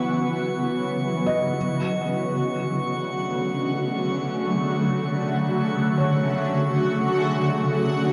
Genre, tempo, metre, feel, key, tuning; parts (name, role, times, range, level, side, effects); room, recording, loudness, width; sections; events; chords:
ambient; free time; A4 = 440 Hz
shimmering ambient pad; sustained chords; 0.0-8.1 s; C#3 to F#4; -24 LUFS; equal; chorus, built-in reverb, phaser
felt-muted upright piano; arpeggios; 0.0-8.1 s; C#5 to D#5; -34 LUFS; equal; tape echo
drifting glass-harmonics texture; texture; 0.0-8.1 s; C#6; -36 LUFS; equal; chorus, built-in reverb
wet cathedral reverb, RT60 6.5 s; dark, warm production; -24 LUFS; mono
0.0-8.1 A section
filter sweep on ambient pad 0.0-8.1
0.0 F#7sus4; 1.6 Dmaj7